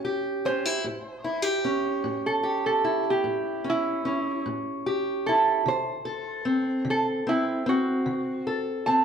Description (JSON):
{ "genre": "acoustic country blues, solo or duo", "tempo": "50 BPM (dotted quarters)", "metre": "12/8", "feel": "straight", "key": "unclear", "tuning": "A4 = 441 Hz", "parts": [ { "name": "fingerpicked steel-string acoustic guitar", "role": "accompaniment", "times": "0.0-9.0 s", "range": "A2 to A4", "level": "-26 LUFS", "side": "left 1 dB", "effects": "none" }, { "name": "lap resonator guitar", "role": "melody", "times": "0.5-9.0 s", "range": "E4 to A5", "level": "-26 LUFS", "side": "right 3 dB", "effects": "none" } ], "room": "wet large studio reverb, RT60 1.3 s", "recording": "band playing live in one room, faint mains hum", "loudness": "-24 LUFS", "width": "side -7 dB against mid", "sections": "0.0-9.0 A section", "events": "none", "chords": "0.0 A7; 5.7 D7" }